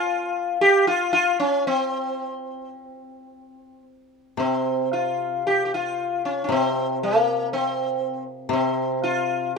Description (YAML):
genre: japanese traditional, Japanese chamber music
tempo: 54-60 BPM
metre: 2/4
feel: rubato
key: C in sen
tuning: A4 = 440 Hz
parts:
  - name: sitar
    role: melody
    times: 0.0-9.5 s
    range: Bb3 to G4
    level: -21 LUFS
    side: left 1 dB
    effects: none
  - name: koto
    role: accompaniment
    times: 4.4-9.6 s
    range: C3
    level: -28 LUFS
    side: left 2 dB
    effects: none
room: light reverb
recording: none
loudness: -20 LUFS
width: side -4 dB against mid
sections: 0.0-4.4 A section; 4.4-9.6 B section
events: none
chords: none